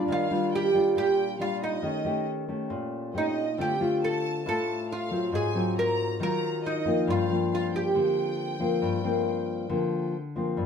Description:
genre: bossa nova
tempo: 137 BPM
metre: 4/4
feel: straight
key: G minor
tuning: A4 = 440 Hz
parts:
  - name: oud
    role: melody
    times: 0.0-10.1 s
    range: D4 to Bb4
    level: -27 LUFS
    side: right 3 dB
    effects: none
  - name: clear symphonic violin section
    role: second line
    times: 0.0-10.1 s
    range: Eb5 to Bb5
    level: -38 LUFS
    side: equal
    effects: none
  - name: nylon-string guitar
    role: accompaniment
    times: 0.0-10.7 s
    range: G2 to G4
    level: -27 LUFS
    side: left 3 dB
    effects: none
room: moderate studio reverb, RT60 0.6 s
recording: band playing live in one room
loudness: -25 LUFS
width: side -7 dB against mid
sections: 0.0-10.6 A section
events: none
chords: 0.1 Ebmaj9; 1.8 Eb7#11; 3.6 Dm7; 5.3 Ab13; 7.1 Gm7

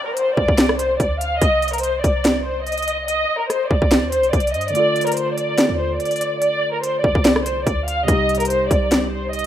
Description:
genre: hip hop, trap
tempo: 144 BPM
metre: 4/4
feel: half-time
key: unclear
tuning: A4 = 440 Hz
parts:
  - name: warm studio violin section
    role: melody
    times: 0.0-9.5 s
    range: Bb4 to F5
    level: -19 LUFS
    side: equal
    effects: low-pass filter, ping-pong delay
  - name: downlifter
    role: sound effects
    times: 0.0-1.4 s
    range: none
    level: -38 LUFS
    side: left 2 dB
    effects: none
  - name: trap drum kit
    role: drums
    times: 0.2-9.4 s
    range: hi-hat, kick drum, rim click, snare drum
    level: -19 LUFS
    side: equal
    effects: overdrive
  - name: clean 808-style bass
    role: bass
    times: 0.4-9.5 s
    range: C2 to G2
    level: -26 LUFS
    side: equal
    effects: none
  - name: mellow tine electric piano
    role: accompaniment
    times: 4.7-9.5 s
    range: C3 to A4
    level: -26 LUFS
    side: right 1 dB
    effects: medium stereo tremolo, low-pass filter
room: moderate digital room reverb, RT60 1.0 s, digital ambience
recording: rough home demo mix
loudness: -16 LUFS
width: side -11 dB against mid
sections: 0.0-9.5 A section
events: kick muted 4.7-5.6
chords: 0.0 Csus2; 1.4 Cm; 4.7 Dm; 8.1 Cm

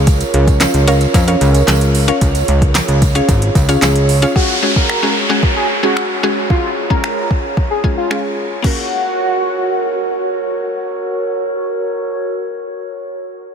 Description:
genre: dance-pop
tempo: 112 BPM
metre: 4/4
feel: straight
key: F# major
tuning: A4 = 440 Hz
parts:
  - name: mallet-like synth pluck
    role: accompaniment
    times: 0.0-12.3 s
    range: G#3 to E#5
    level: -20 LUFS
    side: left 2 dB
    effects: chorus, sidechain pumping
  - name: glass harmonica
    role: sustained chords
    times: 0.0-12.3 s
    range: E#4 to C#5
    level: -20 LUFS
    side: right 2 dB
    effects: sidechain pumping
  - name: fat analog bass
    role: bass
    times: 0.0-4.3 s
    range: G#1 to E#2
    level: -13 LUFS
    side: equal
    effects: sidechain pumping
  - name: smooth R&B drum kit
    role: drums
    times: 0.1-8.8 s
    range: crash cymbal, finger snaps, handclaps, hi-hat, kick drum, snare drum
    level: -17 LUFS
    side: equal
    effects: overdrive
  - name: tambourine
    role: percussion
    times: 0.1-4.3 s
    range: none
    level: -28 LUFS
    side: right 12 dB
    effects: none
  - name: octave-doubled lead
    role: melody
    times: 4.4-10.2 s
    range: E#4 to A#4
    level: -20 LUFS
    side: equal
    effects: chorus, phaser, ping-pong delay
  - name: downlifter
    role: sound effects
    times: 4.4-8.6 s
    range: none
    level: -21 LUFS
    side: equal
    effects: none
room: moderate huge ambient reverb, RT60 8.2 s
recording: dreamy mix soaked in reverb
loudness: -12 LUFS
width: side -7 dB against mid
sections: 0.0-4.4 A section; 4.4-8.6 B section; 8.6-12.9 C section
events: none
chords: 0.0 A#m/C#; 2.2 C#; 4.4 F#sus2; 6.5 C#; 8.6 F#

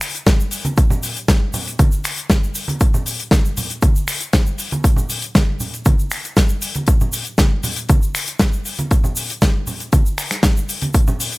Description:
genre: nu-disco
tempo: 118 BPM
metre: 4/4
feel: straight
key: none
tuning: none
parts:
  - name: modern studio drum kit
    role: drums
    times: 0.0-11.4 s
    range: finger snaps, hi-hat, shaker, snare drum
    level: -20 LUFS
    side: left 1 dB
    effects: none
  - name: electronic kick drum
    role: drums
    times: 0.3-11.0 s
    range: none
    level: -15 LUFS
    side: equal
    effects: none
  - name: congas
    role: percussion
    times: 0.3-11.2 s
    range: none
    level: -25 LUFS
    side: right 1 dB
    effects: none
room: little or no reverb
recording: none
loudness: -15 LUFS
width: side -22 dB against mid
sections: 0.0-11.4 A section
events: none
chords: none

